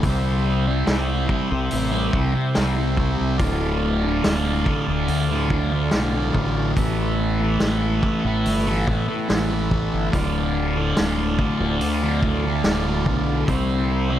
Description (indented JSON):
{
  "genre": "psychedelic rock",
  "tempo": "71 BPM",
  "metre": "4/4",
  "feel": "straight",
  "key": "D dorian",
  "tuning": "A4 = 439 Hz",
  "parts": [
    { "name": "combo organ", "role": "sustained chords", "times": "0.0-14.2 s", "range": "B3 to G5", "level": "-30 LUFS", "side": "right 4 dB", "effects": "none" },
    { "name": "thick fuzz guitar", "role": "riff", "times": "0.0-14.2 s", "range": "D2 to C4", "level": "-22 LUFS", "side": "left 1 dB", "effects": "distortion, phaser, tape echo" },
    { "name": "growling fingered electric bass", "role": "bass", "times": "0.0-14.2 s", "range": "D1 to A2", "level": "-24 LUFS", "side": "equal", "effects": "overdrive" },
    { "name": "vintage drum kit", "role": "drums", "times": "0.0-13.7 s", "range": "hi-hat, kick drum, snare drum", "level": "-25 LUFS", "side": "equal", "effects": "none" }
  ],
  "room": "light reverb",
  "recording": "echo-heavy mix",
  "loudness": "-19 LUFS",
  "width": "side -11 dB against mid",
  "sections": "0.0-14.2 A section",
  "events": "none",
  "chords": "0.0 C; 3.4 Dm; 6.8 Asus2; 10.1 Dm; 13.5 C",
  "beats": "| 0.02 0.87 1.71 2.55 | 3.39 4.24 5.08 5.92 | 6.76 7.60 8.44 9.28 | 10.12 10.96 11.80 12.64 | 13.48"
}